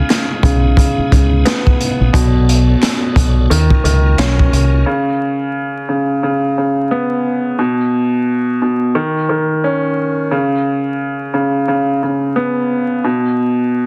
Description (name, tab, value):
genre	hip hop, boom-bap hip-hop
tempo	88 BPM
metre	4/4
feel	swing 62% on 16ths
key	unclear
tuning	A4 = 441 Hz
part	warm upright piano	accompaniment	0.0-13.9 s	B2 to C#4	-18 LUFS	equal	high-pass filter, low-pass filter
part	tonewheel organ	sustained chords	0.0-4.9 s	C#3 to D5	-28 LUFS	equal	overdrive, chorus vibrato, fast rotary speaker, high-pass filter, low-pass filter
part	crunchy breakbeat drum kit	drums	0.1-4.7 s	hi-hat, kick drum, snare drum	-17 LUFS	equal	none
part	finger snap	percussion	0.1-4.4 s	none	-32 LUFS	equal	none
part	deep dub fingered electric bass	bass	0.4-4.8 s	A#1 to D#2	-15 LUFS	equal	none
room	light reverb, studio reverb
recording	dense, heavily limited modern master, vinyl crackle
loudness	-15 LUFS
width	mono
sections	0.0-4.9 A section; 4.9-13.9 B section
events	none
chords	0.0 C#m9; 2.1 Bm9; 3.5 D#m9; 4.9 Bsus2/C#; 7.6 N.C.; 9.0 C#sus2/D#; 10.3 Bsus2/C#; 13.0 N.C.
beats	0.09 0.77 1.46 | 2.14 2.82 3.50 4.18 | 4.87 5.55 6.23 6.91 | 7.59 8.27 8.96 9.64 | 10.32 11.00 11.68 12.37 | 13.05 13.73